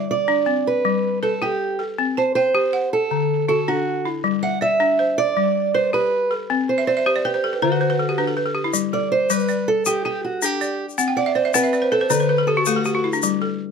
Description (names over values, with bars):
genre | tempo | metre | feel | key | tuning
west african traditional, West African string and xylophone music | 107 BPM (dotted quarters) | 12/8 | straight | G major | A4 = 439 Hz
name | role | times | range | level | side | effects
fingerpicked acoustic archtop guitar | melody | 0.0-13.1 s | F#4 to F#5 | -20 LUFS | right 4 dB | plate reverb
balafon | arpeggios | 0.0-13.7 s | D3 to A5 | -21 LUFS | left 3 dB | none
egg shaker | percussion | 8.7-13.3 s | none | -26 LUFS | left 8 dB | none
room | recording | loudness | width
moderate small room reverb, RT60 0.5 s | none | -18 LUFS | side -6 dB against mid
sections
0.0-8.7 A section; 8.7-13.7 B section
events
balafon fill 6.8-8.7, 11.0-13.2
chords
0.0 G; 2.0 C5; 3.1 D; 4.2 G; 6.5 C5; 7.6 N.C.; 8.7 G; 11.0 Cmaj9#11; 12.1 D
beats
0.28 0.84 1.41 | 1.98 2.54 3.11 3.67 | 4.24 4.80 5.36 5.93 | 6.49 7.05 7.62 8.18 | 8.74 9.30 9.86 10.42 | 10.98 11.54 12.10 12.66 | 13.22